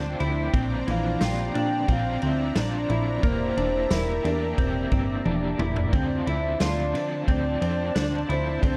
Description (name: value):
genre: dream pop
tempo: 89 BPM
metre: 4/4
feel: straight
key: D minor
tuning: A4 = 440 Hz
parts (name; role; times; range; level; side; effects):
- soft octave-layered synth lead; melody; 0.0-8.8 s; Bb4 to G5; -33 LUFS; equal; chorus, phaser, tape echo
- raw garage guitar; accompaniment; 0.0-8.8 s; Bb2 to G4; -37 LUFS; equal; overdrive, tremolo, analog chorus
- lush unison pad; sustained chords; 0.0-8.8 s; D4 to Bb5; -37 LUFS; equal; chorus
- clean electric guitar; arpeggios; 0.0-8.8 s; E3 to F4; -32 LUFS; equal; analog chorus, tape echo
- plucky analog bass; bass; 0.0-8.8 s; E1 to D3; -30 LUFS; equal; none
- vintage drum kit; drums; 0.2-8.8 s; kick drum, ride cymbal, snare drum, tambourine, toms; -30 LUFS; equal; none
- synth chime; texture; 6.6-8.2 s; none; barely audible; none; none
room: light reverb, small room ambience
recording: dark, warm production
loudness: -25 LUFS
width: mono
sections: 0.0-8.8 A section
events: drum fill 5.3-5.9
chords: 0.0 Dm7; 0.5 Bbadd9; 3.2 Em7b5; 5.9 Dm7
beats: | 0.54 1.21 1.89 2.56 | 3.23 3.91 4.58 5.26 | 5.93 6.61 7.28 7.95 | 8.63